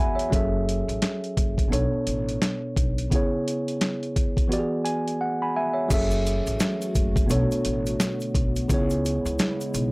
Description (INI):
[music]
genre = hip hop, boom-bap hip-hop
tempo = 86 BPM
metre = 4/4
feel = swing 61% on 16ths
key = F# minor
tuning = A4 = 440 Hz
[part]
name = mellow tine electric piano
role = accompaniment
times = 0.0-9.9 s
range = B2 to B5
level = -26 LUFS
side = equal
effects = high-pass filter, low-pass filter
[part]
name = upright bass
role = bass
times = 0.0-9.9 s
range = F#1 to E2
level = -28 LUFS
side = equal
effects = none
[part]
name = boom bap sampler-style drum kit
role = drums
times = 0.2-9.9 s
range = crash cymbal, hi-hat, kick drum, snare drum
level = -24 LUFS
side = equal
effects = none
[part]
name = dark analog pad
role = sustained chords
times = 5.9-9.9 s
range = C#3 to F#4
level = -33 LUFS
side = left 1 dB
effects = chorus, high-pass filter, low-pass filter
[part]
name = tube shaker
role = percussion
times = 5.9-9.9 s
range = none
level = -42 LUFS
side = left 2 dB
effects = none
[sound]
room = little or no reverb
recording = dry, gritty hardware recording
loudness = -22 LUFS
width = side -27 dB against mid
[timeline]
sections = 0.0-5.9 A section; 5.9-9.9 B section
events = drums muted 5.2-5.9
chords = 0.3 F#m9; 1.7 Bm7; 3.1 C#m7; 4.5 E7; 5.9 F#m9; 7.3 Bm7; 8.7 C#m7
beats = | 0.32 1.02 1.72 2.42 | 3.11 3.81 4.51 5.21 | 5.90 6.60 7.30 8.00 | 8.70 9.39